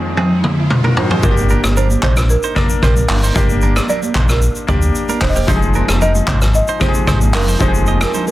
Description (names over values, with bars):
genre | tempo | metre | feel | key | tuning
afrobeats | 113 BPM | 4/4 | straight | unclear | A4 = 444 Hz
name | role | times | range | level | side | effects
bright concert grand piano | accompaniment | 0.0-8.3 s | F3 to C5 | -22 LUFS | left 4 dB | none
airy breathy pad | sustained chords | 0.0-1.2 s | F2 to Ab3 | -27 LUFS | equal | chorus, sidechain pumping
riser | sound effects | 0.0-1.2 s | none | -25 LUFS | right 1 dB | none
direct-recorded clean electric guitar | riff | 0.2-8.2 s | Bb3 to Eb5 | -25 LUFS | right 6 dB | digital delay
street-band drum kit | drums | 0.2-8.3 s | handclaps, hi-hat, kick drum, rim click, shaker, toms | -16 LUFS | equal | soft clipping on snare
congas | percussion | 0.4-8.3 s | none | -25 LUFS | right 8 dB | none
folk marimba with medium mallets | melody | 1.0-8.3 s | Bb4 to Eb5 | -22 LUFS | right 2 dB | none
sub bass with octave | bass | 1.2-8.0 s | Eb1 to D2 | -15 LUFS | equal | none
room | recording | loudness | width
light reverb | dense, heavily limited modern master | -12 LUFS | side -16 dB against mid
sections
0.0-1.2 A section; 1.2-8.3 B section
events
riser 0.0-1.2; drum fill 0.2-1.2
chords
0.0 Fm7; 1.2 Gm; 5.5 Fm7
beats
0.17 0.70 | 1.23 1.76 2.29 2.83 | 3.36 3.89 4.42 4.95 | 5.48 6.01 6.54 7.07 | 7.61 8.14